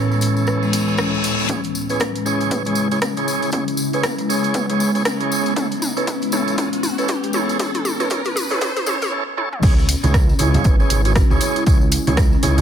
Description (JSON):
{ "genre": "afro house", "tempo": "118 BPM", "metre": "4/4", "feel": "swing 59% on 16ths", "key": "C# minor", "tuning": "A4 = 440 Hz", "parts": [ { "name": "ethereal airy pad", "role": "sustained chords", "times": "0.0-12.6 s", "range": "C#2 to E4", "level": "-26 LUFS", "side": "equal", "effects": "ensemble chorus, built-in reverb, phaser, sidechain pumping" }, { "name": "marimba with soft mallets", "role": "arpeggios", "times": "0.0-12.6 s", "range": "G#3 to C#5", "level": "-24 LUFS", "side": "left 2 dB", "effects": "vintage 12-bit sampler grit, sidechain pumping, low-pass filter, dub echo" }, { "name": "tonewheel organ", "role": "stabs", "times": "0.0-12.6 s", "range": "C#4 to C#5", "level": "-24 LUFS", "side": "right 4 dB", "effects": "overdrive, fast rotary speaker, sidechain pumping, dub echo" }, { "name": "tambourine", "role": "percussion", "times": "0.1-12.6 s", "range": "none", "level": "-30 LUFS", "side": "left 3 dB", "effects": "none" }, { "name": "deep house drum kit", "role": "drums", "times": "0.2-12.6 s", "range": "crash cymbal, hi-hat, rim click, toms", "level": "-25 LUFS", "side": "equal", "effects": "overdrive, high-pass filter on hats, studio reverb, high-pass filter on snare, high-pass filter on toms, high-pass filter on cymbals" }, { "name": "reverse cymbal and riser", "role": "sound effects", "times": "0.6-9.1 s", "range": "none", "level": "-29 LUFS", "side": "left 2 dB", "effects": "none" }, { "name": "electronic kick drum", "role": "drums", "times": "1.5-12.3 s", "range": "none", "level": "-17 LUFS", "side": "equal", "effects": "overdrive, high-pass filter on kick, studio reverb" }, { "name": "dark detuned saw bass", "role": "bass", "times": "9.6-12.6 s", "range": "G#1 to C#2", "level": "-19 LUFS", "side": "equal", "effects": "tube saturation, sidechain pumping" }, { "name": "congas", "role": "percussion", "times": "10.0-12.6 s", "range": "none", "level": "-23 LUFS", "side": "right 2 dB", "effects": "none" } ], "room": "light reverb", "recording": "high-pass filter", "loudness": "-16 LUFS", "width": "side -9 dB against mid", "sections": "0.0-1.5 A section; 1.5-9.6 B section; 9.6-12.6 C section", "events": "filter sweep on marimba 0.0-1.5, 1.5-9.6; reverse cymbal 0.6-1.5; build-up 1.5-9.6; drum fill 1.5-9.1, 9.4; riser 1.5-9.1; drop 9.6-12.6", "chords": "0.0 A/C#; 1.5 C#m; 5.6 A/C#; 9.6 C#m" }